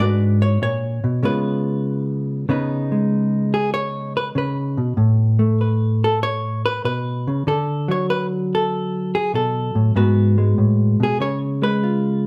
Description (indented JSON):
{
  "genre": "solo jazz",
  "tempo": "96 BPM",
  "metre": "4/4",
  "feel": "swing 68% on 8ths",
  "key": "unclear",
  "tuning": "A4 = 440 Hz",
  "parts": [
    { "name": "hollow-body jazz guitar", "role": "solo", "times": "0.0-12.3 s", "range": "G#2 to D5", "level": "-20 LUFS", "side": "equal", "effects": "none" }
  ],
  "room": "moderate large studio reverb, RT60 0.9 s",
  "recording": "none",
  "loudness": "-20 LUFS",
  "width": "mono",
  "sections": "0.0-2.5 A section; 2.5-12.3 B section",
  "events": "none",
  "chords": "0.0 G#m7b5; 1.2 C#7; 2.5 C#sus2; 5.0 Aadd9; 7.5 D; 9.9 G#m7; 11.2 C#7",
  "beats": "0.61 1.23 1.85 | 2.47 3.10 3.72 4.34 | 4.96 5.58 6.21 6.83 | 7.45 8.08 8.70 9.32 | 9.94 10.57 11.19 11.81"
}